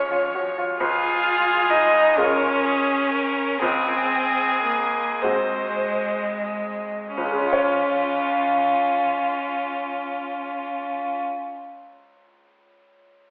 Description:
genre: classical, slow romantic movement for piano quartet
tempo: 28-44 BPM (dotted quarters)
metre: 6/8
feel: rubato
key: Db major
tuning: A4 = 444 Hz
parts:
  - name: rich violin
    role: melody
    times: 0.0-11.2 s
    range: F4 to Db5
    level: -24 LUFS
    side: equal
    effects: none
  - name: rich cello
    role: second line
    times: 0.0-11.2 s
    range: F3 to F4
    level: -23 LUFS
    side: equal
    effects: none
  - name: bright grand piano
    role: accompaniment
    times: 0.0-13.3 s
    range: Db2 to Db5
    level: -26 LUFS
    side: equal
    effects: none
room: wet scoring stage reverb, RT60 1.5 s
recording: heard from further back in the room, telephone sound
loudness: -19 LUFS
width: side -31 dB against mid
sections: 0.8-7.2 A section; 7.2-10.7 B section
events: slowing down 0.0-7.2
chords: 0.0 Db; 3.6 Ab7/Db; 7.2 Db

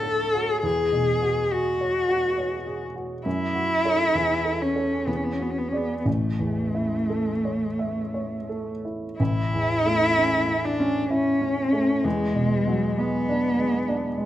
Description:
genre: classical, romantic duo for cello and grand piano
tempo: 56-70 BPM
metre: 3/4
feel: rubato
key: A major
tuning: A4 = 440 Hz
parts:
  - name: rich cello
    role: melody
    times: 0.0-14.3 s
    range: G#3 to A4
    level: -23 LUFS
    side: left 1 dB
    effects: none
  - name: warm baby grand piano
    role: accompaniment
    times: 0.0-14.3 s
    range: A1 to F#5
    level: -27 LUFS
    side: right 1 dB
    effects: none
room: moderate recital hall reverb, RT60 1.5 s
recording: close, detailed microphones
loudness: -22 LUFS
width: side -13 dB against mid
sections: 0.0-9.2 A section; 9.2-14.3 A section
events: none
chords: 0.0 Dmaj7; 0.6 E69; 3.3 F#m7; 4.2 A/E; 5.1 E9; 6.1 A; 12.1 E9

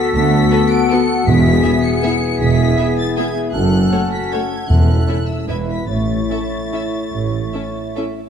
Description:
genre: classical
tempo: 137-172 BPM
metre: 3/4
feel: rubato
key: A major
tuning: A4 = 440 Hz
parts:
  - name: clear studio violin section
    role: melody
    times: 0.0-7.9 s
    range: E6 to D7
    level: -26 LUFS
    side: left 2 dB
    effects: none
  - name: clear clarinet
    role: second line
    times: 0.0-8.1 s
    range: B3 to E4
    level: -24 LUFS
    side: left 5 dB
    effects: none
  - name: dark cor anglais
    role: second line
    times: 0.0-8.1 s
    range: G#4 to C#5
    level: -30 LUFS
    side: right 2 dB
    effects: none
  - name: mellow large flute ensemble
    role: second line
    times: 0.0-8.1 s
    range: E5 to F#5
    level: -26 LUFS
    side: left 2 dB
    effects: none
  - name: mellow French horn section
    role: sustained chords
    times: 0.0-8.1 s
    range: A3 to F#4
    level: -23 LUFS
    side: left 4 dB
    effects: none
  - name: mellow trumpet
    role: stabs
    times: 0.0-8.2 s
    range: G#4 to C#5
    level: -26 LUFS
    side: left 1 dB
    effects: none
  - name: rich studio cello section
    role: bass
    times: 0.1-7.5 s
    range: D2 to A2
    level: -22 LUFS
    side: right 1 dB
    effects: none
  - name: warm studio double bass section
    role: bass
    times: 0.1-7.5 s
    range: E1 to D2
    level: -22 LUFS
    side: right 4 dB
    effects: none
  - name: warm tuba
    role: bass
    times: 0.1-7.5 s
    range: E1 to D2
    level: -24 LUFS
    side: right 3 dB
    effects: none
  - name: warm studio violin section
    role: second line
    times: 0.5-8.0 s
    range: G#4 to E5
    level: -30 LUFS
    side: left 3 dB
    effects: none
  - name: warm studio viola section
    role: accompaniment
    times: 0.5-8.0 s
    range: A3 to A4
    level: -27 LUFS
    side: equal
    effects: none
  - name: timpani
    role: percussion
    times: 1.3-1.8, 4.7-5.2 s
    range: E2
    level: -18 LUFS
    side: equal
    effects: none
room: wet scoring stage reverb, RT60 1.6 s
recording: none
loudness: -14 LUFS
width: side -8 dB against mid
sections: 0.0-8.3 A section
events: none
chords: 0.0 Bm7/D; 1.3 E; 3.5 F#m; 4.7 A/E; 5.5 E5; 5.9 A

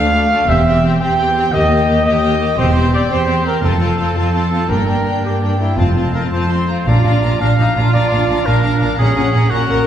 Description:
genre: cinematic, heroic adventure film score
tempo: 114 BPM (dotted quarters)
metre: 12/8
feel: straight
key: F major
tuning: A4 = 439 Hz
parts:
  - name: dark studio violin section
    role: melody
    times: 0.0-9.8 s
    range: F5 to C6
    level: -26 LUFS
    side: left 1 dB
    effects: none
  - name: rich symphonic violin section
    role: second line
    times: 0.0-9.8 s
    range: Db4 to Gb5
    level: -22 LUFS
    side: left 3 dB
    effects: none
  - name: rich symphonic viola section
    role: accompaniment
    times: 0.0-9.9 s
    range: A3 to Bb4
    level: -22 LUFS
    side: equal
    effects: none
  - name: clear trumpet section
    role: stabs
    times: 0.0-6.3 s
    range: E4 to G5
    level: -17 LUFS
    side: equal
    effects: none
  - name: rich symphonic cello section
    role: bass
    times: 0.0-9.8 s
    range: D2 to Bb2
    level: -18 LUFS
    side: right 1 dB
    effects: none
  - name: rich symphonic double bass section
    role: bass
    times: 0.5-9.8 s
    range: E1 to Eb2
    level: -19 LUFS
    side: right 1 dB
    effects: none
  - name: timpani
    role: percussion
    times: 5.8-9.5 s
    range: F2 to Bb2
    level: -21 LUFS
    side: equal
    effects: none
  - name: warm oboe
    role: second line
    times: 6.1-9.9 s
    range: Gb4 to F5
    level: -20 LUFS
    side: right 2 dB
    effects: none
room: wet recital hall reverb, RT60 1.4 s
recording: heard from further back in the room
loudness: -12 LUFS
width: side -10 dB against mid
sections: 0.0-6.9 A section; 6.9-9.9 B section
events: none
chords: 0.5 C/E; 1.5 Eb; 2.6 C/E; 3.6 F; 4.7 Gm; 5.8 F; 6.9 Bb; 9.0 Gb/Bb

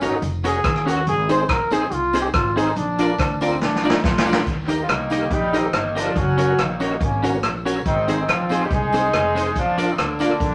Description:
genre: ska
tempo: 141 BPM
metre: 4/4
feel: swing 54% on 8ths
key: unclear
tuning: A4 = 441 Hz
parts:
  - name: brilliant trombone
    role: melody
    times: 0.0-4.5 s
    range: C4 to C5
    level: -25 LUFS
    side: equal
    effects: none
  - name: clean electric guitar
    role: accompaniment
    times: 0.0-10.4 s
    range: C4 to Eb5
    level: -28 LUFS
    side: equal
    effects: none
  - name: tonewheel organ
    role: stabs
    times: 0.0-10.3 s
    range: Db4 to C5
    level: -28 LUFS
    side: equal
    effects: chorus vibrato, slow rotary speaker
  - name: upright bass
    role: bass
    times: 0.0-10.5 s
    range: F1 to Eb2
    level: -29 LUFS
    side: equal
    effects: none
  - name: swinging big-band drum kit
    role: drums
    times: 0.0-10.5 s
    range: hi-hat, kick drum, rim click, snare drum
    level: -26 LUFS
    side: equal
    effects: dub echo
  - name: tambourine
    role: percussion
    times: 0.0-10.3 s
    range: none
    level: -46 LUFS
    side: equal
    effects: dub echo
  - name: warm horn section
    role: melody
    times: 4.8-10.5 s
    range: Db3 to Ab4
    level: -24 LUFS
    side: equal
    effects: tube saturation
room: wet studio reverb, RT60 0.6 s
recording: none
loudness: -20 LUFS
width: mono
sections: 0.0-4.5 A section; 4.5-10.5 B section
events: trombone solo 0.0-4.5; drum fill 3.6-4.5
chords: 0.0 Gb; 1.1 Ab; 2.8 Bb; 4.5 Eb; 6.2 Gb; 7.9 Ab; 9.6 Bb

